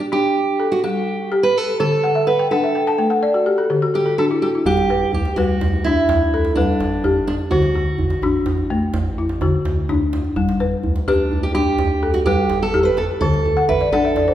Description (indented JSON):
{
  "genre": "west african traditional, West African string and xylophone music",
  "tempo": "84 BPM (dotted quarters)",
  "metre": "12/8",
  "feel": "straight",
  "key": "G major",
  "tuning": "A4 = 440 Hz",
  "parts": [
    { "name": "fingerpicked steel-string acoustic guitar", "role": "melody", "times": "0.0-14.3 s", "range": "D4 to C5", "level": "-20 LUFS", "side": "right 3 dB", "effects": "tape echo" },
    { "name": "balafon", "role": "arpeggios", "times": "0.0-14.3 s", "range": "D3 to A5", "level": "-19 LUFS", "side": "left 3 dB", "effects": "none" },
    { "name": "round analog bass", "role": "bass", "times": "4.7-14.3 s", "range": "G1 to D2", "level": "-24 LUFS", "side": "equal", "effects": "none" },
    { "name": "djembe", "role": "percussion", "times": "4.7-14.3 s", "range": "none", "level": "-24 LUFS", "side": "right 2 dB", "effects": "none" }
  ],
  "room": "wet recital hall reverb, RT60 1.7 s",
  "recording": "heard from further back in the room",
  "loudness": "-16 LUFS",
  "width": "side -12 dB against mid",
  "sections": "0.0-4.7 A section; 4.7-14.3 A section",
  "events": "balafon fill 2.0-4.7, 13.6-14.3",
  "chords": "0.0 G5; 1.8 D5; 4.7 G; 7.5 D; 10.4 G; 13.2 D5"
}